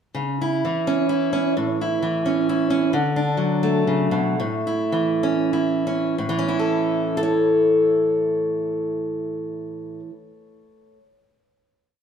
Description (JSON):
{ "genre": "folk, solo fingerstyle acoustic guitar", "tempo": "90-132 BPM", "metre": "3/4", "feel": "rubato", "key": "A major", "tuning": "A4 = 440 Hz", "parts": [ { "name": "fingerpicked steel-string acoustic guitar", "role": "solo", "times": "0.1-11.0 s", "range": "A2 to C#5", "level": "-19 LUFS", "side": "equal", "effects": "none" } ], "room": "wet stone room reverb, RT60 1.4 s", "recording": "band playing live in one room", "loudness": "-19 LUFS", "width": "side -7 dB against mid", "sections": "0.2-6.2 A section; 6.2-10.1 final chord", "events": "slowing down 2.9-6.2", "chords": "0.2 C#m; 1.6 A; 2.9 D; 4.4 A", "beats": "| 0.15 0.63 1.10 | 1.56 2.02 2.48 | 2.94 3.40 3.89 | 4.39 4.93 5.53 | 6.17 6.83 7.49 | 8.14 8.79 9.45" }